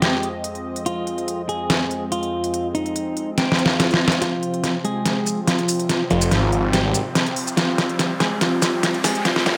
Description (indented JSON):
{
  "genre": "heavy wobble dubstep",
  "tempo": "143 BPM",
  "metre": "4/4",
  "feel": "half-time",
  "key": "F minor",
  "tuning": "A4 = 440 Hz",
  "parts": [
    { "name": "clean electric guitar", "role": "melody", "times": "0.0-9.6 s", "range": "F3 to Ab4", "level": "-26 LUFS", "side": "equal", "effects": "dub echo" },
    { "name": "supersaw pad", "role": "sustained chords", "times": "0.0-9.6 s", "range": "F2 to Eb5", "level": "-31 LUFS", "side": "equal", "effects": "none" },
    { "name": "dubstep drum kit", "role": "drums", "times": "0.0-9.5 s", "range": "hi-hat, shaker, snare drum", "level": "-23 LUFS", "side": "equal", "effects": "studio reverb" },
    { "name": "swell and riser", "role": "sound effects", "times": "3.6-9.6 s", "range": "none", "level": "-33 LUFS", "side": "equal", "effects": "none" },
    { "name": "snarling distorted saw bass", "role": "bass", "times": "6.1-6.9, 9.5-9.6 s", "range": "F1 to Ab1", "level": "-22 LUFS", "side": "equal", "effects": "distortion, overdrive" }
  ],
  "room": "moderate digital room reverb, RT60 1.0 s",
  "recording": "high-pass filter",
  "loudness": "-21 LUFS",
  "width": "mono",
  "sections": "0.0-4.2 A section; 4.2-9.6 B section",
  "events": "drum fill 3.4-4.2, 4.2-9.6; swell 3.6-4.2; build-up 4.2-9.6; riser 4.2-9.6",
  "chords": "0.0 Fm; 4.2 F5",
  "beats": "0.02 0.44 | 0.86 1.28 1.70 2.12 | 2.54 2.96 3.38 3.80 | 4.22 4.64 5.06 5.47 | 5.89 6.31 6.73 7.15 | 7.57 7.99 8.41 8.83 | 9.25"
}